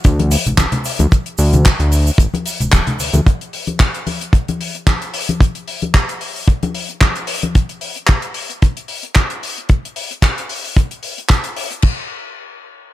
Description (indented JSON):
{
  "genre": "nu-disco, nu disco",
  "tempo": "112 BPM",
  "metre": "4/4",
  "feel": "swing 55% on 16ths",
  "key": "unclear",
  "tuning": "A4 = 439 Hz",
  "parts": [
    { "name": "fat analog bass", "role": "bass", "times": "0.0-3.2 s", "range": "D1 to D2", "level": "-14 LUFS", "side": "equal", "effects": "none" },
    { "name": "damped 70s drum kit", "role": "drums", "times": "0.0-11.9 s", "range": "crash cymbal, handclaps, hi-hat, shaker", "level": "-20 LUFS", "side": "left 1 dB", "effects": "small room ambience" },
    { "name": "kick drum", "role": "drums", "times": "0.0-11.9 s", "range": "none", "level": "-11 LUFS", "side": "equal", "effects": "small room ambience" },
    { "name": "cabasa and congas", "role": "percussion", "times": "0.1-7.5 s", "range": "none", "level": "-22 LUFS", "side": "left 3 dB", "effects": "none" }
  ],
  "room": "studio ambience",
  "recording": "none",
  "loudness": "-14 LUFS",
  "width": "side -14 dB against mid",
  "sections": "0.0-11.8 A section; 11.8-12.9 B section",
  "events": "none",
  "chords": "none"
}